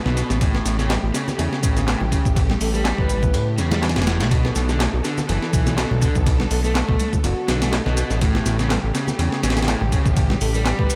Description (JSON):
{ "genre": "breakbeat, breaks", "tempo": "123 BPM", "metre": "4/4", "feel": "swing 55% on 16ths", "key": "unclear", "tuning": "A4 = 440 Hz", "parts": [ { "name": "clear symphonic string section", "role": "sustained chords", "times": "0.0-11.0 s", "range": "C#3 to B4", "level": "-33 LUFS", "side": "equal", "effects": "sidechain pumping" }, { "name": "crunchy overdriven guitar", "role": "riff", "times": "0.1-11.0 s", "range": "G2 to A3", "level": "-29 LUFS", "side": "equal", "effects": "analog delay" }, { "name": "fat analog bass", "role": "bass", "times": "0.1-10.9 s", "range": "E1 to A2", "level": "-24 LUFS", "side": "equal", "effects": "none" }, { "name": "breakbeat sampler-style drum kit", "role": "drums", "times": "0.1-11.0 s", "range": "hi-hat, kick drum, ride cymbal, snare drum", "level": "-24 LUFS", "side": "equal", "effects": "analog delay" }, { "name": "congas and bongos", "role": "percussion", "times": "0.1-11.0 s", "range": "none", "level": "-35 LUFS", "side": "equal", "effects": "none" }, { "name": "electronic shaker and handclaps", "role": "drums", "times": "0.2-11.0 s", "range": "none", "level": "-34 LUFS", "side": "equal", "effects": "analog delay" }, { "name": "breathy flute-like synth lead", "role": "melody", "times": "2.6-3.5, 6.5-11.0 s", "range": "F#4 to B4", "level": "-34 LUFS", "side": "equal", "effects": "chorus, AM radio sound, analog delay" } ], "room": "light reverb", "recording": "echo-heavy mix", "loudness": "-20 LUFS", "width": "mono", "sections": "0.0-11.0 A section", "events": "none", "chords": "0.4 A7; 4.3 Bm7; 8.2 A7", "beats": "| 0.41 0.90 1.39 1.88 | 2.36 2.85 3.34 3.83 | 4.31 4.80 5.29 5.78 | 6.26 6.75 7.24 7.73 | 8.22 8.70 9.19 9.68 | 10.17 10.65" }